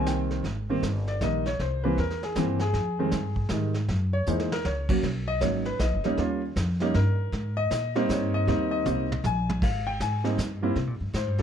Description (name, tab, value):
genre	jazz piano trio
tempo	157 BPM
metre	3/4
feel	swing 63% on 8ths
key	Ab major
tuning	A4 = 445 Hz
part	warm concert grand piano	melody	0.0-11.4 s	Eb3 to Ab5	-27 LUFS	equal	plate reverb
part	upright bass	bass	0.0-11.4 s	D#1 to C3	-28 LUFS	equal	none
part	vintage brush drum kit	drums	0.1-11.4 s	brushed snare drum, crash cymbal, hi-hat, kick drum, snare drum, toms	-33 LUFS	right 1 dB	none
room	light reverb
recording	dark, warm production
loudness	-24 LUFS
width	side -8 dB against mid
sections	0.4-9.6 A section; 9.6-11.4 A section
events	grand piano solo 0.4-11.4; drum fill 4.3-4.7, 8.9-9.6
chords	0.4 Abmaj7sus2; 1.6 C7; 2.7 Fm7; 3.9 Gb7; 5.0 Bmaj7; 6.2 Eb9; 7.3 Abmaj9; 10.8 C7(no3)